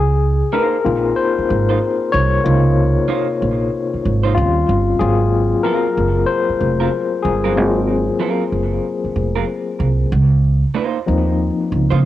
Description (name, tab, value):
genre	R&B, neo-soul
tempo	94 BPM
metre	4/4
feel	swing 63% on 16ths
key	Db major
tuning	A4 = 439 Hz
part	barky tine electric piano	accompaniment	0.0-12.1 s	C3 to Db5	-17 LUFS	left 4 dB	overdrive, medium tremolo
part	upright bass	bass	0.0-12.0 s	F1 to Db3	-16 LUFS	right 2 dB	none
part	electric guitar through a small old amp	second line	0.5-12.0 s	Gb3 to C5	-25 LUFS	right 8 dB	analog delay
room	light reverb, studio ambience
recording	home recording on cassette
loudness	-14 LUFS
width	side -13 dB against mid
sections	0.0-12.1 A section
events	tine electric piano solo 0.0-12.1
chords	0.0 Dbmaj13; 4.4 Eb13; 5.0 Ab13; 10.1 Dbmaj13